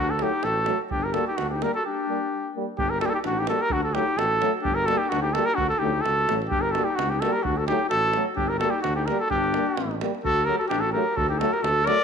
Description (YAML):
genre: balkan folk, Balkan brass band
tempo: 129 BPM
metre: 2/4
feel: swing 55% on 16ths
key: unclear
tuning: A4 = 440 Hz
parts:
  - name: mellow trumpet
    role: melody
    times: 0.0-12.0 s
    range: F#4 to D5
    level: -24 LUFS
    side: right 1 dB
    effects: none
  - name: warm clarinet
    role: second line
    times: 0.0-12.0 s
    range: D4 to Bb4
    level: -30 LUFS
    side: left 8 dB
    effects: none
  - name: mellow tuba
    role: bass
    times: 0.0-11.9 s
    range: G1 to D2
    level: -31 LUFS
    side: right 1 dB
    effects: none
  - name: clear trombone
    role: accompaniment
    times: 0.2-12.0 s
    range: F#3 to G3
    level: -34 LUFS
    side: right 11 dB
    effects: none
  - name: warm euphonium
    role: accompaniment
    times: 0.2-12.0 s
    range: A3 to Bb3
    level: -34 LUFS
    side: left 11 dB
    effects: none
  - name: davul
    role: percussion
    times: 0.2-12.0 s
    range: none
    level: -34 LUFS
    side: right 6 dB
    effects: none
room: moderate echo chamber reverb, RT60 1.6 s, studio reverb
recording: 1960s-style stereo with parts hard left and right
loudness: -22 LUFS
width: side -6 dB against mid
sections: 0.0-2.8 A section; 2.8-10.2 A section; 10.2-12.0 B section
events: break 1.8-2.8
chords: 0.0 D; 0.9 Gm; 3.7 D; 4.7 Gm; 5.6 D; 6.5 Gm; 7.5 D; 8.4 Gm; 10.2 D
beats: 0.43 | 0.90 1.37 | 1.84 2.31 | 2.78 3.25 | 3.72 4.18 | 4.65 5.12 | 5.59 6.05 | 6.52 6.99 | 7.45 7.92 | 8.38 8.85 | 9.31 9.78 | 10.24 10.71 | 11.17 11.63